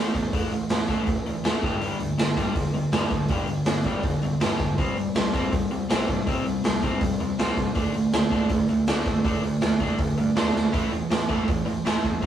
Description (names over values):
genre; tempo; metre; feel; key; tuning
punk rock; 161 BPM; 4/4; straight; A minor; A4 = 440 Hz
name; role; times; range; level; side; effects
overdriven electric guitar; riff; 0.0-12.3 s; G2 to D4; -26 LUFS; left 1 dB; none
growling picked electric bass; bass; 0.0-12.3 s; E1 to A2; -34 LUFS; right 2 dB; overdrive
raw garage drum kit; drums; 0.1-12.3 s; hi-hat, kick drum, snare drum; -24 LUFS; right 2 dB; none
tight distorted guitar; riff; 10.7-12.3 s; A2 to A3; -32 LUFS; right 9 dB; distortion
room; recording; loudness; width
light reverb; rough rehearsal-room recording; -22 LUFS; side -10 dB against mid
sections
0.0-12.3 A section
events
drum fill 10.5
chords
0.0 A5; 1.6 G5; 4.8 C5; 7.8 D5; 10.7 A5